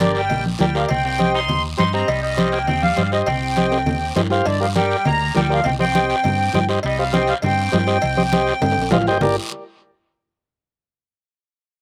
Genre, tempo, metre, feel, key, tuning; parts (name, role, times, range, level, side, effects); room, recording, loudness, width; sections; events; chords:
latin, cumbia; 202 BPM; 4/4; straight; G minor; A4 = 441 Hz
accordion; melody; 0.0-8.9 s; D5 to C6; -24 LUFS; equal; light tremolo tuning
semi-hollow electric guitar; second line; 0.0-8.9 s; D3 to Eb4; -31 LUFS; equal; slapback echo
combo organ; accompaniment; 0.0-9.4 s; G4 to G5; -24 LUFS; equal; slapback echo
hollow-body short-scale fingered electric bass; bass; 0.0-9.4 s; G1 to G2; -26 LUFS; equal
congas; percussion; 0.0-9.3 s; -25 LUFS; equal
cowbell and timbales; percussion; 0.0-9.3 s; -30 LUFS; equal; slapback echo
guiro; percussion; 0.0-9.3 s; -33 LUFS; equal
little or no reverb; recorded outdoors, with no room sound; -19 LUFS; mono
0.0-4.5 A section; 4.5-9.2 B section; 9.2-10.4 C section
drum fill 3.7-4.5, 8.6-9.2; transistor combo organ fill 8.8-9.2
0.0 Gm; 0.9 Cm; 4.5 Gm; 5.7 Cm; 9.2 Gm